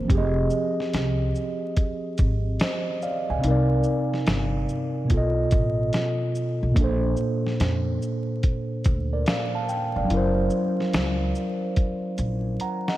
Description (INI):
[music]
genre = lo-fi hip hop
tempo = 72 BPM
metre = 4/4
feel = swing 66% on 16ths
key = unclear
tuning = A4 = 440 Hz
[part]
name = mellow tine electric piano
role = accompaniment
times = 0.0-13.0 s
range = Bb2 to Bb5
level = -25 LUFS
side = right 1 dB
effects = slow stereo tremolo, cassette tape
[part]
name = upright bass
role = bass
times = 0.0-12.6 s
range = F1 to F2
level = -25 LUFS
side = equal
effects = none
[part]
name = dusty soul sampler-style drum kit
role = drums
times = 0.1-13.0 s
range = hi-hat, kick drum, shaker, snare drum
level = -25 LUFS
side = equal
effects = none
[sound]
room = moderate plate reverb, RT60 2.8 s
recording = dreamy mix soaked in reverb, vinyl crackle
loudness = -22 LUFS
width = side -15 dB against mid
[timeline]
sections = 0.1-13.0 A section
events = drum fill 12.6-13.0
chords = 0.1 Fm9; 3.4 Cm9; 5.1 B7#11; 6.8 Bbmaj7; 10.1 Gb7#11